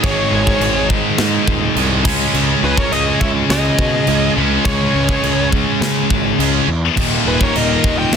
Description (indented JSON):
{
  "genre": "heavy metal",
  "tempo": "104 BPM",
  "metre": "4/4",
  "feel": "straight",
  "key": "unclear",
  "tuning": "A4 = 440 Hz",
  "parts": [
    { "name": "smooth overdriven lead guitar", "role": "melody", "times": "0.0-8.2 s", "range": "Cb5 to G5", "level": "-21 LUFS", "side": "equal", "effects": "tape echo" },
    { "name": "nasal lead guitar with a parked wah", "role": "second line", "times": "0.0-8.2 s", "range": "Ab4 to Eb5", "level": "-26 LUFS", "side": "right 2 dB", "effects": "overdrive" },
    { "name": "distorted electric guitar", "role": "riff", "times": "0.0-8.2 s", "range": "Eb2 to Db4", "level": "-21 LUFS", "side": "right 15 dB", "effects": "overdrive" },
    { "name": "distorted electric guitar", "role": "riff", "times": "0.0-8.2 s", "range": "Eb2 to Db4", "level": "-22 LUFS", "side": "left 2 dB", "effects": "distortion" },
    { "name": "heavy high-gain guitar", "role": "riff", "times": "0.0-8.2 s", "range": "Eb2 to Db4", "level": "-20 LUFS", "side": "left 14 dB", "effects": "distortion" },
    { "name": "fuzz picked electric bass", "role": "bass", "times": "0.0-8.2 s", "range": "Eb1 to Db3", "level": "-20 LUFS", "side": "equal", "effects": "overdrive" },
    { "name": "tight metal drum kit", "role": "drums", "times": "0.0-8.2 s", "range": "china cymbal, crash cymbal, kick drum, snare drum", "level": "-20 LUFS", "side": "equal", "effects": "none" }
  ],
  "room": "little or no reverb",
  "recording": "dense, heavily limited modern master",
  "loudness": "-13 LUFS",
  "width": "side -7 dB against mid",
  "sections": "0.0-8.2 A section",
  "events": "none",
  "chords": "0.0 Ab5; 2.1 Db5; 7.0 Eb5"
}